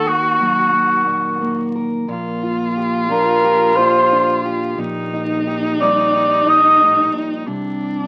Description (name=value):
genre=acoustic folk-pop ballad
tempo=89 BPM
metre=4/4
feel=straight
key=unclear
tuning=A4 = 441 Hz
part: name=dark cor anglais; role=melody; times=0.0-7.1 s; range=Gb4 to Eb5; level=-16 LUFS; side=equal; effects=none
part: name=rich violin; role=second line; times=0.0-8.1 s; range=D4 to Gb4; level=-25 LUFS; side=equal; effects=none
part: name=fingerpicked plugged-in steel-string acoustic guitar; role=accompaniment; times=0.0-8.1 s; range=A2 to Bb4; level=-25 LUFS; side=equal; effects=none
part: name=fingered electric bass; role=bass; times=0.0-8.1 s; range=Bb1 to Eb2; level=-33 LUFS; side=equal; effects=none
room=moderate studio ambience, RT60 0.5 s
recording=very old 78 rpm record, vinyl crackle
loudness=-17 LUFS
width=mono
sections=0.0-8.1 A section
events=none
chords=0.0 Ebm; 2.1 Bb6; 4.8 Eb6/Bb; 7.5 Csus2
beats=0.05 0.72 1.41 | 2.08 2.76 3.44 4.11 | 4.78 5.46 6.13 6.80 | 7.47